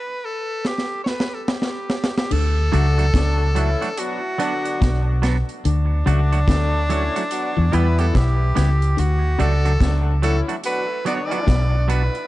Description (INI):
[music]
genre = roots reggae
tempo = 72 BPM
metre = 4/4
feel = swing 62% on 16ths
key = D major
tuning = A4 = 443 Hz
[part]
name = bright tenor saxophone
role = melody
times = 0.0-12.3 s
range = D4 to D5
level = -26 LUFS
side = equal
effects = tape echo
[part]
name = deep reggae drum kit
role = drums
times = 0.6-12.3 s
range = crash cymbal, hi-hat, kick drum, snare drum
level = -23 LUFS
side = equal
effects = none
[part]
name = clean electric guitar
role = riff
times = 2.3-11.7 s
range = B2 to E3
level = -28 LUFS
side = left 6 dB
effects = tube saturation
[part]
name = vintage muted fingered electric bass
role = bass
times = 2.3-12.1 s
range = B1 to E2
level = -18 LUFS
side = equal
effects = none
[part]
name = warm horn section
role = second line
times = 2.7-11.9 s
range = D3 to D5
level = -28 LUFS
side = left 3 dB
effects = tape echo
[part]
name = semi-hollow electric guitar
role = accompaniment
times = 2.7-12.0 s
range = F#3 to G4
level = -28 LUFS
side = right 6 dB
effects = tape echo
[sound]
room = little or no reverb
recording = echo-heavy mix, nothing above 10.3 kHz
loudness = -17 LUFS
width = side -16 dB against mid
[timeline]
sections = 0.0-2.3 A section; 2.3-12.3 A section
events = stop 0.0-2.3; drum fill 0.6-2.3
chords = 0.0 N.C.; 2.3 D; 4.0 Bm; 5.6 D; 7.3 Em; 9.0 D; 10.6 Bm